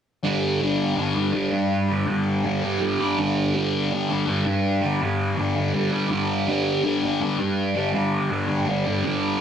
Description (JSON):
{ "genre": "rock", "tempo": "82 BPM", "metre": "4/4", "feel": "straight", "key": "unclear", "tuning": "A4 = 440 Hz", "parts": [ { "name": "fuzz guitar", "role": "solo", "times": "0.2-9.4 s", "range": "G2 to G3", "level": "-20 LUFS", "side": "equal", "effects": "distortion, phaser" } ], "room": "moderate spring reverb, RT60 2.4 s", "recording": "none", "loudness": "-21 LUFS", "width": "side -8 dB against mid", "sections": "0.2-9.4 A section", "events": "none", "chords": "0.2 G5" }